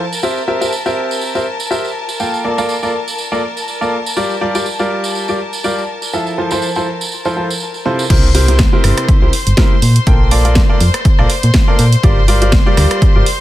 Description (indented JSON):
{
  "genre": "piano house",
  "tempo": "122 BPM",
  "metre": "4/4",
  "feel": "swing 55% on 16ths",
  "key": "unclear",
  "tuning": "A4 = 440 Hz",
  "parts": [
    { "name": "clear studio violin section", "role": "sustained chords", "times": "0.0-13.4 s", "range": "Bb4 to C6", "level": "-23 LUFS", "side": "left 3 dB", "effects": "vintage 12-bit sampler grit, sidechain pumping" },
    { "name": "clear upright piano", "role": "riff", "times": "0.0-13.2 s", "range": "C3 to G5", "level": "-18 LUFS", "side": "equal", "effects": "sidechain pumping, ping-pong delay" },
    { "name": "tambourine", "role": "percussion", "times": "0.1-8.1 s", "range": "none", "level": "-24 LUFS", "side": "right 5 dB", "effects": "none" },
    { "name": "solid FM bass", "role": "bass", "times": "8.1-13.2 s", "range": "G1 to Bb2", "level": "-12 LUFS", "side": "equal", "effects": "sidechain pumping" },
    { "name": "electronic kick drum", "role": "drums", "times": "8.1-13.1 s", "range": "none", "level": "-11 LUFS", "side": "equal", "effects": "overdrive" },
    { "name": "house drum kit", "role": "drums", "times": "8.1-13.4 s", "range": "crash cymbal, hi-hat, rim click, snare drum", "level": "-18 LUFS", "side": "right 1 dB", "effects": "none" }
  ],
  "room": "little or no reverb",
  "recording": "none",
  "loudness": "-12 LUFS",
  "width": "side -14 dB against mid",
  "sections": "0.0-8.1 A section; 8.1-13.4 B section",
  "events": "drop 8.1-13.4",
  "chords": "0.2 C7; 2.0 Bbmaj7; 4.2 Gm7; 6.1 Fmaj7; 8.1 C7; 9.8 Bbmaj7; 12.0 Gm7",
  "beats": "| 0.23 0.72 1.22 1.71 | 2.20 2.69 3.18 3.67 | 4.17 4.66 5.15 5.64 | 6.13 6.62 7.12 7.61 | 8.10 8.59 9.08 9.58 | 10.07 10.56 11.05 11.54 | 12.04 12.53 13.02"
}